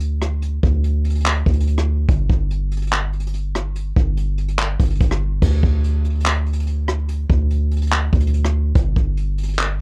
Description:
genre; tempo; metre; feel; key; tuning
hip hop, atmospheric cloud-rap; 144 BPM; 4/4; half-time; unclear; A4 = 441 Hz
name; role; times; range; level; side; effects
long sustained 808-style bass; bass; 0.0-9.8 s; G1 to D2; -21 LUFS; equal; none
jazz brush drum kit; drums; 0.0-9.7 s; crash cymbal, handclaps, hi-hat, kick drum, rim click; -21 LUFS; equal; none
room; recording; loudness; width
little or no reverb; worn, warbling old tape, cassette tape, warbly pitch drift; -19 LUFS; mono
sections
0.0-5.4 A section; 5.4-9.8 A section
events
none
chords
none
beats
0.01 | 0.42 0.84 1.25 1.67 | 2.09 2.50 2.92 3.34 | 3.75 4.17 4.59 5.00 | 5.42 5.84 6.25 6.67 | 7.09 7.50 7.92 8.34 | 8.76 9.17 9.59

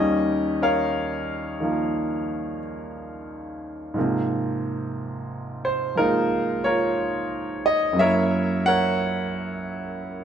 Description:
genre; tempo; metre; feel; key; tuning
solo jazz; 60 BPM; 4/4; swing 67% on 8ths; Eb minor; A4 = 439 Hz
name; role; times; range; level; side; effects
clear concert grand piano; solo; 0.0-10.2 s; Eb2 to Gb5; -22 LUFS; equal; none
room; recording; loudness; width
moderate stone room reverb, RT60 1.2 s; band playing live in one room; -22 LUFS; side -8 dB against mid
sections
0.0-10.2 A section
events
none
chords
0.0 Eb7; 4.0 Ab69; 8.0 Gb7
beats
0.94 1.95 2.95 | 3.96 4.96 5.97 6.98 | 7.98 8.99 9.99

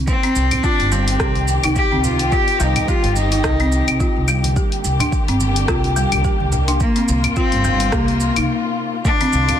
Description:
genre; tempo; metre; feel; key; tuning
organic downtempo; 107 BPM; 4/4; swing 57% on 16ths; C minor; A4 = 440 Hz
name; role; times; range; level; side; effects
upright bass; bass; 0.0-9.4 s; G1 to C2; -20 LUFS; equal; tube saturation, sidechain pumping
rich cello; melody; 0.1-9.6 s; Bb3 to G4; -20 LUFS; left 2 dB; tape echo
dark studio string section; sustained chords; 0.1-9.6 s; C3 to G4; -24 LUFS; left 3 dB; vintage 12-bit sampler grit, sidechain pumping
deep house drum kit; drums; 0.1-9.6 s; claves, hi-hat, rim click, shaker; -24 LUFS; left 1 dB; overdrive
electronic kick drum; drums; 0.1-9.2 s; none; -20 LUFS; equal; overdrive
folk marimba with medium hard mallets; arpeggios; 0.2-9.3 s; G3 to G4; -24 LUFS; right 1 dB; tape echo
congas; percussion; 0.5-9.6 s; none; -28 LUFS; right 2 dB; none
room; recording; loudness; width
light reverb, small room ambience; dense, heavily limited modern master; -15 LUFS; side -9 dB against mid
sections
0.0-9.1 A section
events
break 8.5-9.1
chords
0.0 Cm; 4.6 Gm; 6.8 Fsus4; 9.1 F7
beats
| 0.08 0.64 1.20 1.76 | 2.32 2.88 3.44 4.00 | 4.56 5.12 5.69 6.25 | 6.81 7.37 7.93 8.49 | 9.05

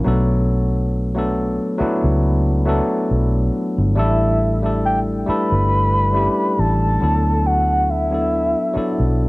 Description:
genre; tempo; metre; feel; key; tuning
contemporary R&B; 69 BPM; 4/4; swing 54% on 16ths; unclear; A4 = 440 Hz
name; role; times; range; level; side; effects
tine electric piano; accompaniment; 0.0-9.3 s; F#3 to A4; -20 LUFS; left 1 dB; cassette tape
vintage muted fingered electric bass; bass; 0.1-9.3 s; G1 to D2; -18 LUFS; equal; none
soft octave-layered synth lead; melody; 4.0-9.2 s; E5 to B5; -20 LUFS; equal; chorus, tremolo, cassette tape, tape echo
room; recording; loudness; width
light reverb; home recording on cassette; -16 LUFS; side -22 dB against mid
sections
0.0-9.3 A section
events
none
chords
0.1 Bm7; 4.0 A7sus4; 7.0 D69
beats
| 0.49 1.36 2.23 3.10 | 3.97 4.84 5.71 6.58 | 7.45 8.32 9.19

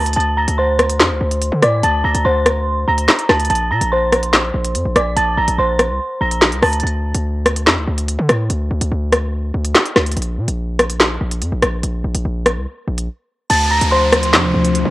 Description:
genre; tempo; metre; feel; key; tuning
hip hop, drill; 144 BPM; 4/4; half-time; D minor; A4 = 440 Hz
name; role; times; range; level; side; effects
dark detuned synth bell; melody; 0.0-6.8, 13.5-14.9 s; C5 to Bb6; -17 LUFS; right 1 dB; chorus, low-pass filter, cassette tape
hard-hitting 808-style bass; bass; 0.0-14.9 s; Bb1 to D3; -19 LUFS; equal; none
drill drum kit; drums; 0.1-14.8 s; crash cymbal, handclaps, hi-hat, rim click, snare drum; -15 LUFS; equal; cassette tape
deep dark ambient pad; sustained chords; 13.9-14.9 s; C3 to D4; -20 LUFS; left 2 dB; chorus, built-in reverb, cassette tape
downlifter; sound effects; 13.5-14.9 s; none; -23 LUFS; equal; none
room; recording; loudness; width
light reverb; home recording on cassette; -14 LUFS; side -18 dB against mid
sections
0.0-13.5 A section; 13.5-14.9 B section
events
break 6.8-13.5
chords
0.2 D7(no3); 3.5 Bbmaj7(no3); 6.8 N.C.; 10.2 Bb5; 13.5 Dm7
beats
| 0.17 0.58 1.00 1.42 | 1.83 2.25 2.67 3.08 | 3.50 3.92 4.33 4.75 | 5.17 5.58 6.00 6.42 | 6.83 7.25 7.67 8.08 | 8.50 8.92 9.33 9.75 | 10.17 10.58 11.00 11.42 | 11.83 12.25 12.67 13.08 | 13.50 13.92 14.33 14.75

